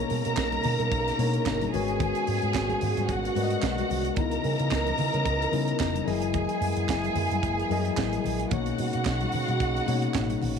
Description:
disco; 110 BPM; 4/4; swing 56% on 16ths; A4 = 440 Hz
warm studio string section; second line; 0.0-10.6 s; F#4 to A#5; -29 LUFS; right 1 dB
mellow tine electric piano; accompaniment; 0.0-10.6 s; B2 to D#5; -31 LUFS; left 11 dB
mellow French horn section; sustained chords; 0.0-10.6 s; A#2 to D#5; -34 LUFS; right 3 dB
picked electric bass with an envelope filter; bass; 0.1-10.6 s; E#1 to C#3; -30 LUFS; right 2 dB
tight funk drum kit; drums; 0.1-10.6 s; handclaps, hi-hat, kick drum, snare drum; -33 LUFS; right 6 dB
congas; percussion; 0.1-10.6 s; -38 LUFS; left 9 dB
light reverb, small room ambience; 1960s-style stereo with parts hard left and right; -24 LUFS; side -6 dB against mid
0.0-10.6 A section
0.0 Bmaj9; 1.7 G#m11; 4.2 C#m9; 6.1 F#13; 8.5 Bmaj9
0.37 0.91 1.46 | 2.00 2.54 3.09 3.63 | 4.17 4.71 5.26 5.80 | 6.34 6.89 7.43 7.97 | 8.52 9.06 9.60 10.14

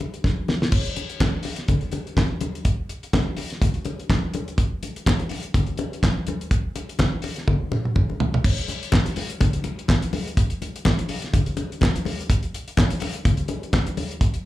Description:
disco; 124 BPM; 4/4; swing 56% on 16ths
congas; percussion; 0.0-14.1 s; -28 LUFS; left 3 dB; slapback echo
damped 70s drum kit; drums; 0.1-14.4 s; crash cymbal, handclaps, hi-hat, kick drum, snare drum, toms; -21 LUFS; equal
light reverb; live gig heard through the venue's PA, club reverb; -21 LUFS; side -15 dB against mid
0.7-8.4 A section; 8.4-14.5 B section
drum fill 0.2-0.7, 7.5-8.4
0.24 | 0.73 1.21 1.69 2.17 | 2.65 3.14 3.62 4.10 | 4.58 5.07 5.55 6.03 | 6.51 7.00 7.48 7.96 | 8.44 8.93 9.41 9.89 | 10.37 10.85 11.33 11.81 | 12.29 12.77 13.25 13.73 | 14.21

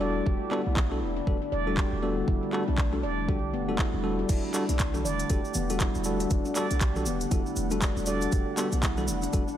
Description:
afro house; 119 BPM; 4/4; swing 59% on 16ths; E minor; A4 = 437 Hz
ethereal airy pad; sustained chords; 0.0-9.6 s; D3 to F#5; -36 LUFS; right 2 dB; ensemble chorus, built-in reverb, sidechain pumping
handpan; arpeggios; 0.0-9.5 s; B3 to D5; -32 LUFS; left 1 dB; vintage 12-bit sampler grit, sidechain pumping, analog delay
bell-like tine electric piano; stabs; 0.0-9.4 s; G3 to A4; -32 LUFS; left 1 dB; auto-pan, sidechain pumping, analog delay
warm 808-style bass; bass; 0.0-9.4 s; E1 to B1; -32 LUFS; equal; sidechain pumping
electronic kick drum; drums; 0.3-9.5 s; -27 LUFS; equal; small room reverb
afro-pop drum kit; drums; 0.5-9.5 s; crash cymbal, handclaps, hi-hat, toms; -35 LUFS; equal; small room reverb
egg shaker; percussion; 4.3-9.6 s; -38 LUFS; right 2 dB
light reverb, digital ambience; dry, gritty hardware recording; -25 LUFS; side -11 dB against mid
0.0-9.6 A section
0.0 Em11
| 0.26 0.76 1.27 1.77 | 2.28 2.78 3.29 3.79 | 4.29 4.80 5.30 5.81 | 6.31 6.81 7.32 7.82 | 8.33 8.83 9.34

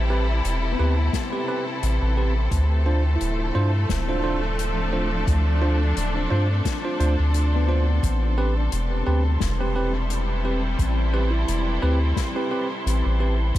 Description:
ambient dub; 87 BPM; 4/4; swing 56% on 16ths; A minor; A4 = 442 Hz
rich symphonic string section; sustained chords; 0.0-13.6 s; C3 to A4; -29 LUFS; left 1 dB
soft dub sub bass; bass; 0.0-13.6 s; D1 to G2; -22 LUFS; equal
wind-like tuned noise texture; texture; 0.0-13.6 s; C4 to C6; -34 LUFS; left 2 dB; built-in reverb
bell-like tine electric piano; stabs; 0.1-13.4 s; C4 to C5; -29 LUFS; right 2 dB; dub echo
soft-mallet drum kit; drums; 0.4-13.6 s; hi-hat, snare drum; -34 LUFS; left 7 dB; dub echo
handpan; arpeggios; 0.7-12.8 s; B3 to D5; -35 LUFS; left 2 dB; tape echo
electronic kick drum; drums; 1.1-13.6 s; -26 LUFS; equal
small room ambience; -20 LUFS; side -14 dB against mid
0.0-13.6 A section
0.0 Am9; 2.5 Dm7; 8.0 Am9
0.45 1.14 1.83 | 2.52 3.21 3.90 4.58 | 5.27 5.96 6.65 7.34 | 8.03 8.72 9.41 10.10 | 10.79 11.48 12.17 12.86 | 13.55

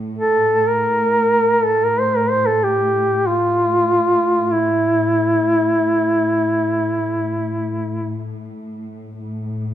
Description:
caucasian folk, Caucasian lament; free time; A4 = 440 Hz
dark studio cello section; drone; 0.0-9.7 s; A2; -26 LUFS; left 1 dB
breathy duduk; melody; 0.2-8.3 s; E4 to C5; -16 LUFS; equal
light reverb; minimal, uncompressed stereo recording; -15 LUFS; side -11 dB against mid
0.0-9.7 A section
free time

